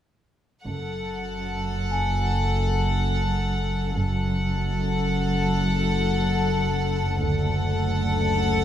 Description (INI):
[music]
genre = cinematic, suspense film score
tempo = 74 BPM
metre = 4/4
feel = straight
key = F# minor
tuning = A4 = 440 Hz
[part]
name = clear studio violin section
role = second line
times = 0.7-8.6 s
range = A4 to F#5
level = -27 LUFS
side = left 3 dB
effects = none
[part]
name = dark studio cello section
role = bass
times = 0.7-8.6 s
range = D2 to F#2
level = -28 LUFS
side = right 2 dB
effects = none
[part]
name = rich studio double bass section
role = bass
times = 0.7-8.0 s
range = F#1 to D2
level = -30 LUFS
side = right 3 dB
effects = none
[part]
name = analog drone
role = drone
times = 1.3-8.6 s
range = F#1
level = -25 LUFS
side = equal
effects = chorus
[part]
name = large celesta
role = texture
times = 1.9-7.2 s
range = G#5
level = -34 LUFS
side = left 3 dB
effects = none
[sound]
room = light reverb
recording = close, detailed microphones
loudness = -22 LUFS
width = side -10 dB against mid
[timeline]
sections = 0.7-8.6 A section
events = none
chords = 0.7 F#m; 7.2 D/F#